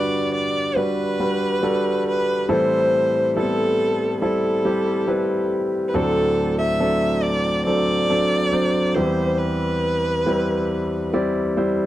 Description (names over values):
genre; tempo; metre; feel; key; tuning
pop ballad; 70 BPM; 4/4; straight; G major; A4 = 437 Hz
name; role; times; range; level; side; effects
warm violin; melody; 0.0-11.1 s; A4 to E5; -22 LUFS; equal; slapback echo
clear concert grand piano; accompaniment; 0.0-11.9 s; D2 to D5; -20 LUFS; equal; none
room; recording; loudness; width
light reverb; dry, close 1970s-style studio recording; -18 LUFS; side -14 dB against mid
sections
0.0-11.9 A section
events
none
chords
0.0 Gmaj7; 2.5 Am7; 5.9 D7; 9.0 Cmaj7/E